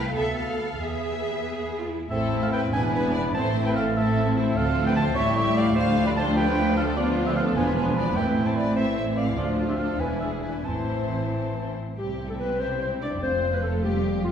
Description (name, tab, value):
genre	quick classical-period movement for symphony orchestra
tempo	89-102 BPM (dotted quarters)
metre	6/8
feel	rubato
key	A minor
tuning	A4 = 441 Hz
part	warm studio violin section	melody	0.0-14.3 s	E4 to F5	-36 LUFS	left 4 dB	none
part	rich studio violin section	second line	0.0-14.3 s	E4 to F5	-35 LUFS	left 3 dB	none
part	warm studio viola section	accompaniment	0.0-14.3 s	E3 to A4	-30 LUFS	equal	none
part	warm chamber double bass section	bass	0.0-14.3 s	E1 to E2	-31 LUFS	right 2 dB	none
part	warm studio cello section	bass	0.0-14.3 s	D2 to B4	-30 LUFS	right 1 dB	none
part	dark clarinet	second line	2.1-14.3 s	A3 to D5	-31 LUFS	left 1 dB	none
part	flute section	second line	2.1-11.8 s	E4 to F5	-34 LUFS	left 2 dB	none
part	mellow cor anglais	second line	2.1-11.8 s	B4 to A5	-29 LUFS	right 2 dB	none
part	warm bassoon	accompaniment	2.1-11.7 s	E3 to C4	-32 LUFS	right 1 dB	none
part	dark French horn section	sustained chords	2.1-14.3 s	E3 to E4	-31 LUFS	left 1 dB	none
room	wet recital hall reverb, RT60 1.7 s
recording	heard from further back in the room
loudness	-22 LUFS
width	side -8 dB against mid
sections	0.0-2.1 A section; 2.1-12.0 B section; 12.0-14.3 C section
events	none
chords	0.2 Bm7b5/D; 0.8 E; 2.1 Am; 2.7 E5; 3.3 Am; 4.6 Dm7; 5.2 A5; 5.8 Dm; 7.0 Bdim/D; 7.6 E5; 8.2 Am; 9.4 Dm; 10.0 E7; 10.7 Am; 12.0 C; 13.2 F